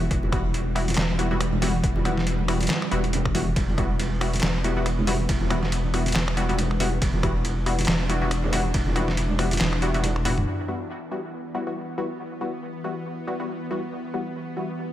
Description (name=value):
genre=deep dubstep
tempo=139 BPM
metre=4/4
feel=swing 57% on 16ths, half-time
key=E minor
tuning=A4 = 440 Hz
part: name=bowed-like drone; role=sustained chords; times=0.0-14.9 s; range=E3 to D4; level=-32 LUFS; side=left 1 dB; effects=built-in reverb
part: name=soft dub sub bass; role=bass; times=0.0-10.5 s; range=E1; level=-26 LUFS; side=equal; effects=none
part: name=electronic kick drum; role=drums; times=0.1-8.8 s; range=none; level=-26 LUFS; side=equal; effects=overdrive
part: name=trip hop sampler-style drum kit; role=drums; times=0.1-10.6 s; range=crash cymbal, finger snaps, handclaps, hi-hat, ride cymbal, snare drum, toms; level=-28 LUFS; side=equal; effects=overdrive, low-pass filter on hats, low-pass filter on snare, low-pass filter on cymbals, low-pass filter on toms
part: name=congas and bongos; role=percussion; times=0.2-10.3 s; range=none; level=-31 LUFS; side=right 2 dB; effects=dub echo
part: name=filtered dub chord stab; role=stabs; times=0.3-14.7 s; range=G3 to F#4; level=-29 LUFS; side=left 2 dB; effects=chorus, dub echo
room=light reverb, digital ambience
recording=none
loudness=-22 LUFS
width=side -12 dB against mid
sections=0.0-10.5 A section; 10.5-14.9 B section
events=drop 0.0-10.5; drum fill 10.3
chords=0.0 Emadd9